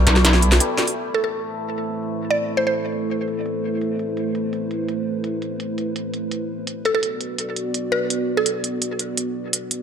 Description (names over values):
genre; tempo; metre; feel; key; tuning
half-time drum and bass; 168 BPM; 4/4; half-time; A minor; A4 = 441 Hz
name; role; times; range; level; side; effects
dark analog pad; sustained chords; 0.0-9.8 s; A3 to D5; -26 LUFS; right 2 dB; chorus, vintage 12-bit sampler grit
santur; arpeggios; 0.0-5.2 s; G3 to E4; -29 LUFS; left 5 dB; digital delay
deep soft wobble bass; bass; 0.0-0.6 s; B1; -15 LUFS; equal; chorus
industrial drum kit; drums; 0.1-9.8 s; hi-hat, snare drum; -21 LUFS; right 1 dB; low-pass filter on hats, low-pass filter on snare, low-pass filter on room
mallet-like synth pluck; melody; 1.1-2.7, 6.9-8.9 s; A4 to D5; -24 LUFS; right 1 dB; chorus, dub echo
room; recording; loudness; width
moderate lush hall reverb, RT60 1.8 s, digital ambience; none; -20 LUFS; side -7 dB against mid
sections
1.0-9.8 A section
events
break 0.6-1.0; filter sweep on drum 1.0-9.8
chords
0.0 Bm; 1.0 Amadd9; 6.7 Bm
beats
0.25 0.60 | 0.96 1.32 1.67 2.03 | 2.39 2.75 3.10 3.46 | 3.82 4.17 4.53 4.89 | 5.25 5.60 5.96 6.32 | 6.67 7.03 7.39 7.75 | 8.10 8.46 8.82 9.17 | 9.53